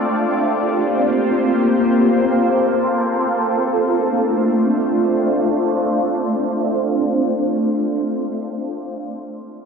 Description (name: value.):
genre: hip hop.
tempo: free time.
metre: none.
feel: none.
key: D minor.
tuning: A4 = 441 Hz.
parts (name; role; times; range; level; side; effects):
shimmering ambient pad; sustained chords; 0.0-7.8 s; A3 to C5; -16 LUFS; equal; chorus, built-in reverb, phaser.
room: moderate spring reverb, RT60 1.4 s, digital ambience.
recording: home recording on cassette, low-pass filter.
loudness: -16 LUFS.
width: side -6 dB against mid.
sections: 0.0-3.5 A section; 3.5-7.1 B section.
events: filter sweep 0.0-3.5.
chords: 0.0 C7sus4; 3.5 Dm7.